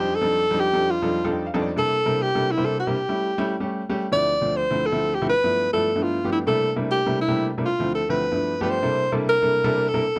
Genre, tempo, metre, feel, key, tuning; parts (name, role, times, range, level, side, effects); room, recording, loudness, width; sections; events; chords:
jazz; 204 BPM; 4/4; straight; C mixolydian; A4 = 436 Hz
clear alto saxophone; melody; 0.0-10.2 s; E4 to D5; -24 LUFS; equal
clear baby grand piano; accompaniment; 0.0-10.2 s; D2 to G5; -27 LUFS; equal
light reverb; close, detailed microphones; -23 LUFS; mono
0.0-8.8 A section; 8.8-10.2 A section
grand piano fill 1.2-1.8
0.0 F13; 1.8 C13; 2.9 A7; 4.1 Dm7; 5.3 G13; 6.5 C13; 7.7 Dm7; 8.2 G13; 8.8 C13